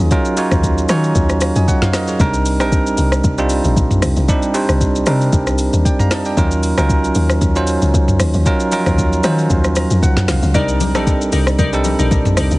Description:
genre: amapiano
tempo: 115 BPM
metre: 4/4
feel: swing 55% on 16ths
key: C dorian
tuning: A4 = 445 Hz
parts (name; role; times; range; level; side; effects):
- bell-like tine electric piano; accompaniment; 0.0-12.6 s; F3 to Bb5; -17 LUFS; right 2 dB; none
- deep log drum bass; bass; 0.0-12.6 s; Bb1 to Eb3; -17 LUFS; equal; none
- smooth R&B drum kit; drums; 0.1-12.6 s; hi-hat, kick drum, rim click, shaker, snare drum, toms; -18 LUFS; equal; none
- glassy wavetable pluck; stabs; 10.5-12.6 s; Eb4 to D5; -22 LUFS; left 3 dB; chorus, digital delay
- congas and bongos; percussion; 10.5-12.4 s; none; -25 LUFS; left 8 dB; none
room: little or no reverb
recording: heavily compressed radio sound, multiband compression, nothing above 10.8 kHz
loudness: -13 LUFS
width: side -20 dB against mid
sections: 0.0-12.6 A section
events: tine electric piano fill 9.5-10.5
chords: 0.0 Ebm9; 2.2 Cm9; 6.4 Ebm9; 10.5 Cm9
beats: | 0.11 0.63 1.15 1.68 | 2.20 2.72 3.24 3.76 | 4.29 4.81 5.33 5.85 | 6.37 6.89 7.42 7.94 | 8.46 8.98 9.50 10.02 | 10.55 11.07 11.59 12.11

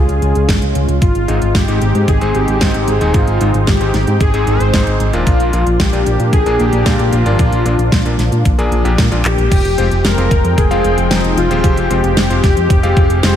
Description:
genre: synthwave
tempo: 113 BPM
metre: 4/4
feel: straight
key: F minor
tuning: A4 = 441 Hz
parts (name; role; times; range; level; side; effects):
- soft supersaw; melody; 0.0-13.4 s; Eb4 to C5; -18 LUFS; left 1 dB; tape echo
- warm analog pad; sustained chords; 0.0-13.4 s; Db3 to G5; -21 LUFS; left 1 dB; chorus, sidechain pumping
- fat analog bass; bass; 0.0-13.3 s; Eb1 to Bb2; -15 LUFS; equal; none
- pop drum kit; drums; 0.1-13.3 s; crash cymbal, handclaps, hi-hat, snare drum; -20 LUFS; equal; none
- electronic kick drum; drums; 0.5-13.1 s; none; -14 LUFS; equal; none
- bright electric grand piano; stabs; 1.3-13.4 s; Ab2 to G5; -21 LUFS; left 1 dB; slapback echo, ping-pong delay
room: light reverb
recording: none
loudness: -11 LUFS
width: side -10 dB against mid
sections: 0.0-9.5 A section; 9.5-13.4 B section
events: drum fill 9.2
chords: 0.0 Db; 1.0 Ab; 5.3 Bb; 9.5 Fmadd9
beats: 0.49 | 1.02 1.55 2.08 2.61 | 3.14 3.67 4.21 4.74 | 5.27 5.80 6.33 6.86 | 7.39 7.92 8.45 8.98 | 9.51 10.04 10.58 11.11 | 11.64 12.17 12.70 13.23

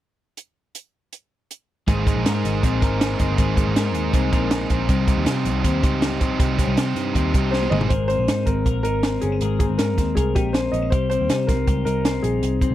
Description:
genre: jangly indie pop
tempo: 159 BPM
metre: 4/4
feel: straight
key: Ab major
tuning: A4 = 440 Hz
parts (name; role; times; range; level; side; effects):
- compact cocktail drum kit; drums; 0.4-12.7 s; hi-hat, kick drum, snare drum, toms; -22 LUFS; right 1 dB; none
- biting overdriven guitar; accompaniment; 1.9-7.9 s; C3 to C5; -25 LUFS; right 7 dB; none
- twelve-string electric guitar; arpeggios; 1.9-12.7 s; G3 to Bb4; -25 LUFS; left 7 dB; tape echo
- vintage muted picked electric bass; bass; 1.9-12.7 s; G1 to C3; -24 LUFS; equal; none
- warm upright piano; melody; 7.5-12.7 s; G4 to Eb5; -24 LUFS; equal; none
room: little or no reverb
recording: dry, close 1970s-style studio recording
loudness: -18 LUFS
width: side -13 dB against mid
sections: 0.4-1.9 A section; 1.9-7.9 B section; 7.9-12.7 C section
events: drum fill 7.5-7.9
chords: 0.4 N.C.; 1.9 Abadd9; 4.9 Cm; 7.7 Abadd9; 10.9 Cm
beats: | 0.38 0.75 1.13 1.50 | 1.88 2.25 2.63 3.01 | 3.38 3.76 4.14 4.51 | 4.89 5.27 5.64 6.02 | 6.40 6.77 7.15 7.53 | 7.90 8.28 8.66 9.04 | 9.41 9.79 10.17 10.54 | 10.92 11.30 11.67 12.05 | 12.43

